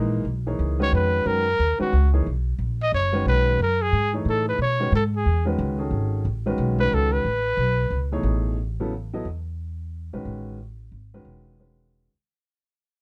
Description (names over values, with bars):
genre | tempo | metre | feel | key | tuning
modal jazz | 180 BPM | 3/4 | swing 62% on 8ths | unclear | A4 = 440 Hz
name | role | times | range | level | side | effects
warm upright piano | accompaniment | 0.0-12.1 s | B2 to D#5 | -30 LUFS | equal | none
upright bass | bass | 0.0-12.2 s | E1 to B2 | -26 LUFS | equal | none
mellow trumpet | melody | 0.8-8.1 s | F#4 to D#5 | -25 LUFS | equal | none
room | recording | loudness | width
little or no reverb | close, detailed microphones | -23 LUFS | mono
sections
0.3-8.3 A section; 8.3-12.3 B section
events
fade-out 8.3-12.3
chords
0.3 Bmaj9; 4.3 Amaj9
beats
| 0.25 0.59 0.92 | 1.25 1.59 1.92 | 2.25 2.59 2.92 | 3.26 3.59 3.92 | 4.26 4.59 4.92 | 5.26 5.59 5.92 | 6.26 6.59 6.92 | 7.26 7.59 7.92 | 8.26 8.59 8.93 | 9.26 9.59 9.93 | 10.26 10.59 10.93 | 11.26 11.60 11.93